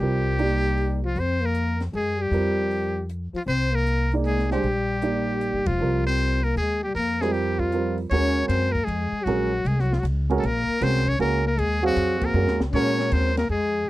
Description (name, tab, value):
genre	modal jazz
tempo	156 BPM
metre	3/4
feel	swing 65% on 8ths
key	F dorian, Eb dorian from 8.1 s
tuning	A4 = 440 Hz
part	trumpet with metal mute	melody	0.0-13.9 s	F4 to Db5	-27 LUFS	equal	none
part	breathy trombone	second line	0.0-13.9 s	F3 to Db4	-28 LUFS	left 4 dB	none
part	dark grand piano	accompaniment	0.0-13.3 s	G3 to F5	-26 LUFS	right 5 dB	none
part	upright bass	bass	0.0-13.9 s	E1 to Bb2	-25 LUFS	equal	none
part	compact cocktail drum kit	drums	0.4-13.4 s	crash cymbal, hi-hat, kick drum, ride cymbal, snare drum	-32 LUFS	left 1 dB	none
room	little or no reverb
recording	dry, close 1970s-style studio recording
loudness	-21 LUFS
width	side -16 dB against mid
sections	0.0-8.1 A section; 8.1-13.9 B section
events	band accent 5.6, 12.2; drum fill 12.4-12.7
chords	0.0 F13sus4; 8.1 Ebm9